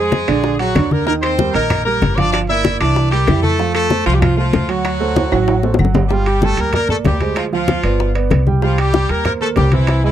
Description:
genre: latin, salsa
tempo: 191 BPM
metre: 4/4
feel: straight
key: G minor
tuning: A4 = 440 Hz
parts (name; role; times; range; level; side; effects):
- brilliant horn section; melody; 0.0-10.1 s; E3 to E5; -19 LUFS; left 1 dB; none
- warm grand piano; accompaniment; 0.0-10.1 s; D3 to G#5; -20 LUFS; right 8 dB; none
- upright bass; bass; 0.0-10.1 s; G1 to F2; -18 LUFS; left 1 dB; none
- bongos; percussion; 0.1-10.1 s; none; -21 LUFS; left 7 dB; none
- congas; percussion; 0.1-10.1 s; none; -20 LUFS; left 2 dB; none
- timbales; percussion; 0.1-10.0 s; none; -25 LUFS; right 7 dB; none
- claves; percussion; 0.3-5.9 s; none; -29 LUFS; left 17 dB; none
room: little or no reverb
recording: dry, close 1970s-style studio recording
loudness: -13 LUFS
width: side -11 dB against mid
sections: 0.0-6.1 A section; 6.1-10.1 B section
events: drum fill 5.2-6.1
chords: 0.4 Bbaug7; 1.1 Eb; 2.3 Gm7; 3.0 C7; 3.6 F; 4.8 D7; 6.1 Gm; 7.4 Dm7b5; 8.0 G; 8.6 Cm7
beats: 0.13 0.44 0.76 | 1.07 1.39 1.70 2.02 | 2.33 2.65 2.96 3.28 | 3.59 3.90 4.22 4.53 | 4.85 5.16 5.48 5.79 | 6.11 6.42 6.73 7.05 | 7.36 7.68 7.99 8.31 | 8.62 8.93 9.25 9.56 | 9.88

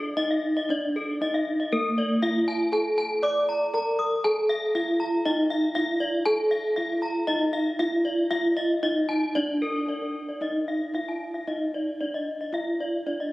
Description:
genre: gamelan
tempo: 116 BPM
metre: 4/4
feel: straight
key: D pelog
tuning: A4 = 440 Hz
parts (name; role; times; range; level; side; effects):
- gamelan-type bronze metallophone; melody; 0.0-13.3 s; Bb3-40c to D5; -25 LUFS; equal; none
- gamelan-type bronze metallophone; arpeggios; 0.0-13.3 s; A4-45c to Eb6; -29 LUFS; left 1 dB; none
room: wet concert hall reverb, RT60 2.4 s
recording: recorded on a phone in the room, club reverb, nothing above 10.7 kHz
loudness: -23 LUFS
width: side -18 dB against mid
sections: 0.0-1.7 A section; 1.7-9.9 B section; 9.9-13.3 C section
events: none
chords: none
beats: 0.17 0.70 1.21 | 1.72 2.23 2.73 3.23 | 3.74 4.24 4.74 5.25 | 5.75 6.25 6.76 7.28 | 7.79 8.31 8.83 9.36 | 9.88 10.41 10.94 11.47 | 12.01 12.54 13.07

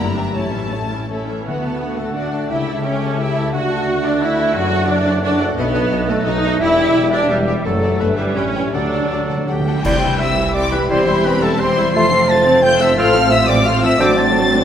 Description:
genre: classical, dramatic, fast romantic movement for symphony orchestra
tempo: 174 BPM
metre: 3/4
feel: rubato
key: D major, C major from 9.8 s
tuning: A4 = 440 Hz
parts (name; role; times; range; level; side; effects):
- warm symphonic violin section; melody; 0.0-14.6 s; G4 to C7; -24 LUFS; left 3 dB; none
- warm symphonic violin section; second line; 0.0-14.6 s; C4 to A5; -27 LUFS; left 3 dB; none
- clear studio viola section; accompaniment; 0.0-14.6 s; D3 to F#4; -22 LUFS; right 1 dB; none
- concert harp; arpeggios; 0.0-14.6 s; E2 to A5; -24 LUFS; left 5 dB; none
- dark symphonic cello section; bass; 0.0-14.6 s; C2 to F#4; -28 LUFS; right 3 dB; none
- warm studio double bass section; bass; 0.0-14.6 s; E1 to F#2; -26 LUFS; right 4 dB; none
- timpani; percussion; 0.4-2.0, 8.7-9.8 s; A2 to D3; -27 LUFS; right 2 dB; none
- warm clarinet; second line; 1.1-14.1 s; D4 to F#5; -27 LUFS; equal; none
- mellow French horn section; sustained chords; 1.1-14.6 s; G3 to C5; -21 LUFS; equal; none
- mellow hollow concert flute; second line; 1.5-14.5 s; G4 to C6; -24 LUFS; left 1 dB; none
- warm oboe; second line; 1.5-14.6 s; F#4 to C6; -26 LUFS; right 1 dB; none
- warm bassoon; accompaniment; 1.5-14.1 s; E3 to C4; -26 LUFS; right 1 dB; none
- warm tuba; bass; 1.5-9.8 s; E1 to D2; -27 LUFS; right 3 dB; none
- cymbal swell, clash cymbals and concert bass drum; percussion; 7.7-10.5 s; none; -28 LUFS; equal; none
- bright trombone section; sustained chords; 9.8-14.6 s; F3 to E4; -24 LUFS; right 3 dB; none
room: wet scoring stage reverb, RT60 1.7 s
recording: none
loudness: -14 LUFS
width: side -9 dB against mid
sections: 0.0-1.5 A section; 1.5-9.8 B section; 9.8-14.6 C section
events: timpani fill 8.7-9.8; band accent 9.8-10.2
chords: 0.0 Em7b5/G; 0.3 A; 1.5 D; 2.5 A7/C#; 3.5 D; 4.6 D/F#; 5.6 B7; 6.6 Em; 7.7 D/F#; 8.0 Em7/G; 8.4 A9; 8.7 D; 9.8 C; 10.9 C/E; 11.9 F; 13.0 F/A; 14.0 D7/A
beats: | 0.35 0.73 1.10 | 1.47 1.82 2.17 | 2.51 2.85 3.20 | 3.54 3.88 4.22 | 4.56 4.89 5.23 | 5.58 5.92 6.26 | 6.61 6.96 7.30 | 7.66 8.01 8.37 | 8.73 9.11 9.48 | 9.84 10.20 10.55 | 10.90 11.25 11.60 | 11.94 12.29 12.63 | 12.98 13.32 13.66 | 14.00 14.35

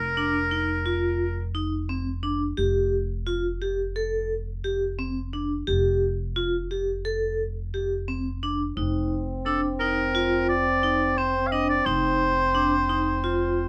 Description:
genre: contemporary instrumental, chamber music in an uneven meter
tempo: 174 BPM (eighths)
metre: 9/8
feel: straight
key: F mixolydian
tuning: A4 = 440 Hz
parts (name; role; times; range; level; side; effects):
- clear oboe; melody; 0.0-1.5, 9.5-13.7 s; A4 to F5; -27 LUFS; equal; none
- upright bass; bass; 0.0-13.7 s; F1; -33 LUFS; equal; none
- vibraphone with hard mallets; arpeggios; 0.2-13.6 s; C4 to A4; -29 LUFS; equal; none
- mellow French horn; second line; 8.8-13.7 s; C4; -31 LUFS; equal; none
room: light reverb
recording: none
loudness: -25 LUFS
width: mono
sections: 0.0-13.7 A section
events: none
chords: 0.0 F7sus4; 2.6 G5/F; 8.8 F7(no3)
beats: 0.17 0.51 0.86 1.20 1.55 1.89 2.24 | 2.58 2.93 3.27 3.61 3.96 4.30 4.65 4.99 5.34 | 5.68 6.02 6.37 6.71 7.06 7.40 7.74 8.09 8.43 | 8.78 9.12 9.46 9.81 10.15 10.49 10.84 11.18 11.52 | 11.87 12.21 12.55 12.89 13.24 13.58

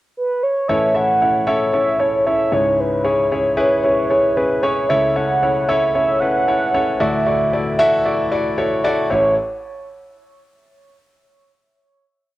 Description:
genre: pop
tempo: 114 BPM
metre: 4/4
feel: straight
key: A major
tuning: A4 = 438 Hz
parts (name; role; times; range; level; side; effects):
- mellow horn-like synth lead; melody; 0.2-9.3 s; B4 to F#5; -18 LUFS; right 2 dB; chorus, cassette tape
- clear concert grand piano; accompaniment; 0.7-9.3 s; A1 to E5; -18 LUFS; left 1 dB; none
- mellow French horn section; sustained chords; 0.7-9.4 s; C#3 to D5; -27 LUFS; left 2 dB; none
room: moderate spring reverb, RT60 2.0 s, small room ambience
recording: home recording on cassette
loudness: -15 LUFS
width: side -16 dB against mid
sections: 0.0-0.7 pickup bar; 0.7-9.1 verse; 9.1-11.2 final chord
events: none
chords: 0.0 N.C.; 0.7 A; 2.5 C#m; 4.9 A/C#; 7.0 Dadd9; 9.1 A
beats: 0.15 | 0.68 1.21 1.73 2.26 | 2.79 3.31 3.84 4.36 | 4.89 5.42 5.94 6.47 | 7.00 7.52 8.05 8.58 | 9.10

